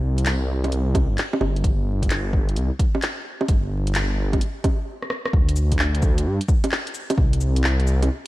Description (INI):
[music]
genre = future garage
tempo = 130 BPM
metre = 4/4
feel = swing 67% on 16ths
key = unclear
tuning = A4 = 440 Hz
[part]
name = swelling detuned saw bass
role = bass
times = 0.0-8.1 s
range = G1 to G2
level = -21 LUFS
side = equal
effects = sidechain pumping
[part]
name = garage drum kit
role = drums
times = 0.2-8.1 s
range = bongos, cabasa, handclaps, hi-hat, rim click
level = -26 LUFS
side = right 1 dB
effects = none
[part]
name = electronic kick drum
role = drums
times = 0.9-7.3 s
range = none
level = -20 LUFS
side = equal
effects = none
[sound]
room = little or no reverb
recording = vinyl crackle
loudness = -19 LUFS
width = side -17 dB against mid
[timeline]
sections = 0.0-5.3 A section; 5.3-8.3 B section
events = stop 4.9-5.3; drum fill 5.0-5.3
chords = none